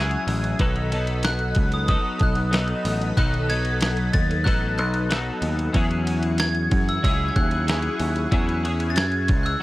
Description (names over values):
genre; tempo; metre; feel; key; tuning
indie pop, bedroom pop; 93 BPM; 4/4; straight; E major; A4 = 441 Hz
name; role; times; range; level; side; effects
glockenspiel with soft plastic mallets; melody; 0.0-9.6 s; D#6 to A6; -28 LUFS; equal; analog chorus
twelve-string electric guitar; accompaniment; 0.0-9.6 s; B2 to A4; -27 LUFS; left 2 dB; ensemble chorus, warbly pitch drift
ensemble organ-string; sustained chords; 0.0-9.6 s; G#4 to D#6; -35 LUFS; equal; phaser, ensemble chorus
picked electric bass; bass; 0.0-9.5 s; A1 to F#2; -25 LUFS; equal; none
dusty soul sampler-style drum kit; drums; 0.1-9.6 s; hi-hat, kick drum, ride cymbal, snare drum; -24 LUFS; equal; none
room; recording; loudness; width
little or no reverb; dry, gritty hardware recording; -20 LUFS; side -17 dB against mid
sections
0.0-9.6 A section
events
none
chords
0.0 E69; 0.6 B7; 5.7 E69